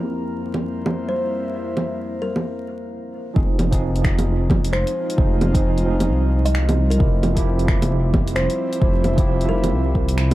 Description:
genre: future garage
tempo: 132 BPM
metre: 4/4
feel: swing 60% on 16ths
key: F minor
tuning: A4 = 440 Hz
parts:
  - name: tine electric piano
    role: accompaniment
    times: 0.0-10.3 s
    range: F3 to Ab4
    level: -27 LUFS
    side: right 3 dB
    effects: overdrive, fast stereo tremolo, vintage 12-bit sampler grit, sidechain pumping, dub echo
  - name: airy breathy pad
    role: sustained chords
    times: 0.0-10.3 s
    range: F2 to F5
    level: -31 LUFS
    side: left 1 dB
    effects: chorus, sidechain pumping
  - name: drifting glass-harmonics texture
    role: texture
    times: 0.0-2.9 s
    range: Bb3 to Bb4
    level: -32 LUFS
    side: left 5 dB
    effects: chorus, built-in reverb
  - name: deep house drum kit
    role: drums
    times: 0.5-10.3 s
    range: bongos, finger snaps, hi-hat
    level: -24 LUFS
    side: right 1 dB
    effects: none
  - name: kalimba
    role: melody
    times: 1.1-10.1 s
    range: Bb4 to Eb5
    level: -27 LUFS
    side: equal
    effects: vintage 12-bit sampler grit, dub echo
  - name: dark detuned saw bass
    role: bass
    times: 3.4-10.3 s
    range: F1 to C2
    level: -20 LUFS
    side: equal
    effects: tube saturation, sidechain pumping
  - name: electronic kick drum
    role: drums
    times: 3.4-10.1 s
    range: none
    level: -19 LUFS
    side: equal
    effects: none
room: light reverb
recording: echo-heavy mix, vinyl crackle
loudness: -17 LUFS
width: side -16 dB against mid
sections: 0.0-3.4 A section; 3.4-10.3 B section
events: break 2.9-3.4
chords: 0.0 C/F; 3.4 Fm7; 7.0 C/F

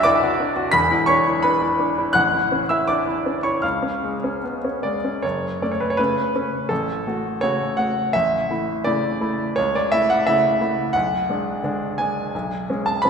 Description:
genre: classical, romantic character piece for solo piano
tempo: 73-90 BPM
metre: 2/4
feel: rubato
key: F# minor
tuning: A4 = 438 Hz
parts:
  - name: clear baby grand piano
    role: solo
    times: 0.0-13.1 s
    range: E1 to B6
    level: -18 LUFS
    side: equal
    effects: none
room: wet concert hall reverb, RT60 2.3 s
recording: recorded in a church or concert hall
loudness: -19 LUFS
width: side -6 dB against mid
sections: 0.0-5.2 A section; 5.2-13.1 B section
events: none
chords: 0.0 Bm; 0.7 E5; 2.2 A; 3.6 C#; 5.2 F#m; 6.7 F#m/A; 8.1 A; 9.6 A/C#; 10.9 G#dim/B; 12.3 C#7(no3)/B

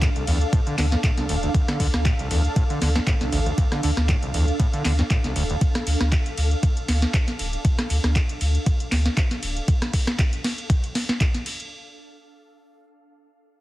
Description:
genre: acid house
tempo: 118 BPM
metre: 4/4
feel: swing 55% on 16ths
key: D minor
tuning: A4 = 440 Hz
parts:
  - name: overdriven acid bass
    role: riff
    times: 0.0-5.6 s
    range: C2 to D3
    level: -27 LUFS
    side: equal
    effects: distortion, tube saturation, analog chorus, sidechain pumping, tape echo
  - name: warm sub bass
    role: bass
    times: 0.0-9.6 s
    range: D1 to D2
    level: -22 LUFS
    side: equal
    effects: sidechain pumping
  - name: booming analog drum machine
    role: drums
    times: 0.0-11.7 s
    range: handclaps, hi-hat, ride cymbal, rim click, snare drum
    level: -27 LUFS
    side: equal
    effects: none
  - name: electronic kick drum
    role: drums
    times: 0.0-11.3 s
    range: none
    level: -21 LUFS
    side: equal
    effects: overdrive
  - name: ethereal airy pad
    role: texture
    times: 0.0-9.7 s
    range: D4 to F5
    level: -31 LUFS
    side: right 1 dB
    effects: ensemble chorus, built-in reverb, sidechain pumping
room: digital ambience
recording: heavily compressed radio sound, multiband compression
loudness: -20 LUFS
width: side -16 dB against mid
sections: 0.0-11.7 A section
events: drop 0.0-11.7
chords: 0.0 Dm

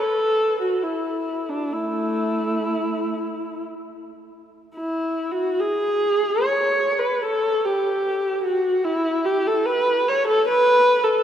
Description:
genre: classical, free, expressive piece for unaccompanied viola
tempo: 47-81 BPM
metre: 3/4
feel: rubato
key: unclear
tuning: A4 = 438 Hz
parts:
  - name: dark viola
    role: solo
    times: 0.0-11.2 s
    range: A3 to C#5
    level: -19 LUFS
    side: equal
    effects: none
room: wet church reverb, RT60 3.6 s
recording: none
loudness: -19 LUFS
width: side -9 dB against mid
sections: 0.0-4.7 A section; 4.7-11.2 B section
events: none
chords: none

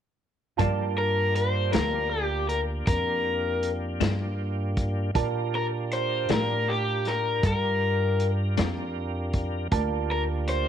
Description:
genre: slow blues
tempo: 53 BPM (dotted quarters)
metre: 12/8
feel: straight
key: G minor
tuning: A4 = 441 Hz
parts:
  - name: clean electric guitar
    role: accompaniment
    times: 0.6-8.8 s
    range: G2 to D4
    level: -32 LUFS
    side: left 15 dB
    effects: tremolo
  - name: clear upright piano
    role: accompaniment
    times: 0.6-10.7 s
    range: F4 to A5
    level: -34 LUFS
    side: right 14 dB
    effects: none
  - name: tonewheel organ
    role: sustained chords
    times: 0.6-10.7 s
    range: Bb3 to Bb4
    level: -35 LUFS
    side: equal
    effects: slow rotary speaker, chorus vibrato
  - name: upright bass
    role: bass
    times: 0.6-10.7 s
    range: D2 to Bb2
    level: -28 LUFS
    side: equal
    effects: none
  - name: vintage drum kit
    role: drums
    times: 0.6-10.7 s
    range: hi-hat, kick drum, snare drum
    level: -29 LUFS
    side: equal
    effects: none
  - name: raw garage guitar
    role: melody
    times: 1.0-10.7 s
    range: G4 to C5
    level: -27 LUFS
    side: left 2 dB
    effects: overdrive
room: small room ambience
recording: 1960s-style stereo with parts hard left and right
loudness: -24 LUFS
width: side -9 dB against mid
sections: 0.6-10.7 A section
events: none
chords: 0.6 Gm7

